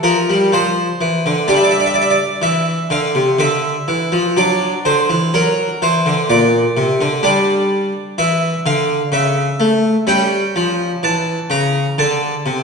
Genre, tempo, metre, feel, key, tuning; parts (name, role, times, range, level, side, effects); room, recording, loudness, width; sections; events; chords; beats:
classical, baroque-style suite movement for harpsichord; 63 BPM; 3/4; rubato; A4 = 440 Hz
harpsichord; solo; 0.0-12.6 s; Bb2 to A#5; -13 LUFS; equal
wet recital hall reverb, RT60 1.6 s; recorded in a church or concert hall, nothing above 10.9 kHz; -13 LUFS; side -5 dB against mid
0.0-12.6 A section
0.0 N.C.; 0.5 F5; 1.5 G5; 4.4 D; 6.3 Bbadd9; 7.2 Dmadd9; 9.1 A/C#; 10.1 C#dim7; 12.0 D5
0.51 | 1.47 2.43 3.40 | 4.36 5.33 6.29 | 7.24 8.19 9.13 | 10.09 11.03 11.99